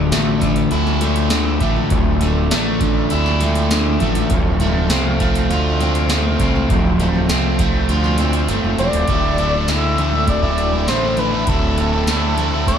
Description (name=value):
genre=psychedelic rock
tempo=100 BPM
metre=4/4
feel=straight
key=D minor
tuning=A4 = 444 Hz
part: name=mellow tonewheel organ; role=sustained chords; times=0.0-12.8 s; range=F3 to G5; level=-29 LUFS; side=right 5 dB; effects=chorus vibrato, slow rotary speaker
part: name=crunchy overdriven guitar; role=riff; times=0.0-12.8 s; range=D2 to F4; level=-19 LUFS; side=left 1 dB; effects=none
part: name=fuzz fingered electric bass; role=bass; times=0.0-12.8 s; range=D1 to D2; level=-20 LUFS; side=equal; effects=overdrive
part: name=booming analog drum machine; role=drums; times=0.1-12.8 s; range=hi-hat, kick drum, snare drum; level=-22 LUFS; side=equal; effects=none
part: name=congas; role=percussion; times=0.4-12.8 s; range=none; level=-30 LUFS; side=right 2 dB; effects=none
part: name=octave-doubled lead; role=melody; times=8.8-12.8 s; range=A4 to E5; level=-21 LUFS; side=equal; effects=chorus
room=moderate studio reverb, RT60 0.7 s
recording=band playing live in one room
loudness=-15 LUFS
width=side -8 dB against mid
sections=0.0-9.1 A section; 9.1-12.8 B section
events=kick and snare drop out 8.5-9.1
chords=0.0 Dmadd9; 4.3 F/D; 9.1 Dsus2